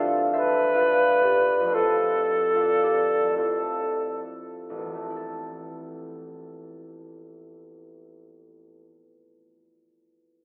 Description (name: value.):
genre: classical, impressionist duo for alto saxophone and harp.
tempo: 31-48 BPM (dotted quarters).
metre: 6/8.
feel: rubato.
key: A minor.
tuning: A4 = 440 Hz.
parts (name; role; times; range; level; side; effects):
clear alto saxophone; melody; 0.0-4.2 s; A4 to B4; -25 LUFS; equal; none.
concert harp; accompaniment; 0.0-9.3 s; A1 to C6; -31 LUFS; equal; none.
room: wet church reverb, RT60 3.3 s.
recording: recorded in a church or concert hall, telephone sound.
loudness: -23 LUFS.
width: mono.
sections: 0.0-5.2 A section; 5.2-8.5 B section.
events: slowing down 0.0-5.2.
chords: 0.0 Dm9; 1.7 Fmaj7; 5.2 Am.